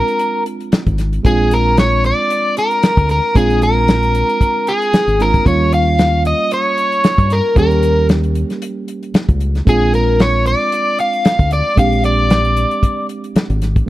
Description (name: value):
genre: straight-eighth soul blues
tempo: 114 BPM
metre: 4/4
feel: swing 55% on 16ths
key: Bb mixolydian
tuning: A4 = 440 Hz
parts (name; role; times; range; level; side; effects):
- crunchy overdriven guitar; melody; 0.0-13.1 s; Ab4 to F5; -15 LUFS; equal; none
- reed electric piano; accompaniment; 0.0-13.9 s; G3 to G4; -21 LUFS; right 4 dB; none
- warm soul drum kit; drums; 0.1-13.9 s; hi-hat, kick drum, snare drum; -14 LUFS; equal; none
- fingered electric bass; bass; 0.7-13.8 s; Ab1 to G2; -16 LUFS; equal; none
room: small room ambience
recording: none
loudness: -12 LUFS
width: side -16 dB against mid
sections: 0.0-13.9 A section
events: none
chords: 0.0 Bb9; 5.5 Eb9; 9.7 Bb9